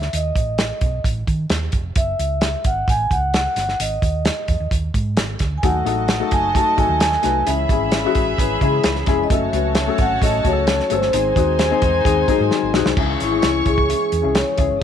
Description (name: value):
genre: uptempo 1960s-style soul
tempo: 131 BPM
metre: 4/4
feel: straight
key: unclear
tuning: A4 = 440 Hz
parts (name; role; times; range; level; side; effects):
- vibraphone with soft mallets; melody; 0.0-14.8 s; E4 to A5; -21 LUFS; right 1 dB; none
- hollow-body short-scale fingered electric bass; bass; 0.0-14.8 s; F1 to Eb3; -24 LUFS; right 1 dB; none
- warm soul drum kit; drums; 0.0-14.7 s; crash cymbal, hi-hat, kick drum, snare drum; -21 LUFS; right 1 dB; none
- warm studio string section; second line; 5.6-14.8 s; D#4 to C#6; -26 LUFS; equal; none
- dark upright piano; accompaniment; 5.6-14.8 s; G#3 to B4; -22 LUFS; left 13 dB; none
- tonewheel organ; sustained chords; 5.6-14.8 s; D#3 to A4; -29 LUFS; right 1 dB; stopped rotary speaker
- electric guitar through a small old amp; riff; 11.8-12.9 s; F#3 to B#4; -24 LUFS; left 14 dB; none
room: light reverb, small room ambience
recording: 1960s-style stereo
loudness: -16 LUFS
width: side -9 dB against mid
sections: 0.0-13.0 A section; 13.0-14.8 B section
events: drum fill 12.5-13.0; vibraphone solo 13.0-14.8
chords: 0.1 F7#11; 2.0 F#5; 3.8 G#5; 5.6 D#dim; 7.5 C#m; 9.3 F#m; 11.1 G#; 13.0 C#m